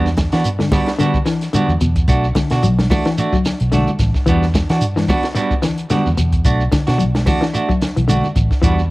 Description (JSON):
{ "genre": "afrobeat", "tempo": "110 BPM", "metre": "4/4", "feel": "swing 56% on 16ths", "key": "E minor", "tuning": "A4 = 440 Hz", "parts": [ { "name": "semi-hollow electric guitar", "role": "arpeggios", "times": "0.0-8.8 s", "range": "B2 to F#3", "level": "-20 LUFS", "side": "left 3 dB", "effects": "none" }, { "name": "clean electric guitar", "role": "stabs", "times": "0.0-8.8 s", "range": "G3 to F#4", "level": "-21 LUFS", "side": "right 2 dB", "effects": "none" }, { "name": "vintage muted fingered electric bass", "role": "bass", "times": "0.0-8.9 s", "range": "A1 to E3", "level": "-17 LUFS", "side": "equal", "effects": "none" }, { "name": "compact cocktail drum kit", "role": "drums", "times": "0.1-8.8 s", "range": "hi-hat, kick drum, snare drum", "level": "-19 LUFS", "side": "equal", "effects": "cassette tape" }, { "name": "shekere", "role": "percussion", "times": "0.1-8.9 s", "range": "none", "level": "-26 LUFS", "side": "right 1 dB", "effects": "none" }, { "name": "congas", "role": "percussion", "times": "0.2-8.8 s", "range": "none", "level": "-23 LUFS", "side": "right 1 dB", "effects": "none" } ], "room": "small room reverb", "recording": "home recording on cassette", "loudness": "-14 LUFS", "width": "side -20 dB against mid", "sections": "0.0-8.9 A section", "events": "none", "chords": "0.0 Em9; 2.1 Bm7; 4.3 Em9; 6.4 Bm7", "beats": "0.45 0.99 1.54 | 2.08 2.63 3.17 3.72 | 4.26 4.81 5.36 5.90 | 6.45 6.99 7.54 8.09 | 8.63" }